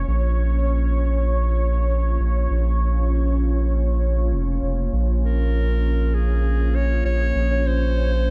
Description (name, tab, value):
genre	ambient dub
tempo	99 BPM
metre	4/4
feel	straight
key	Bb minor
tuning	A4 = 438 Hz
part	deep dark ambient pad	sustained chords	0.0-8.3 s	Bb3 to Db5	-30 LUFS	equal	chorus, built-in reverb
part	round analog bass	bass	0.0-8.3 s	F1 to Bb1	-22 LUFS	equal	none
part	warm clarinet	melody	5.2-8.3 s	Ab4 to Db5	-29 LUFS	equal	dub echo
room	light reverb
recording	none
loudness	-21 LUFS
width	mono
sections	0.0-8.3 A section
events	none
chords	0.0 Bbm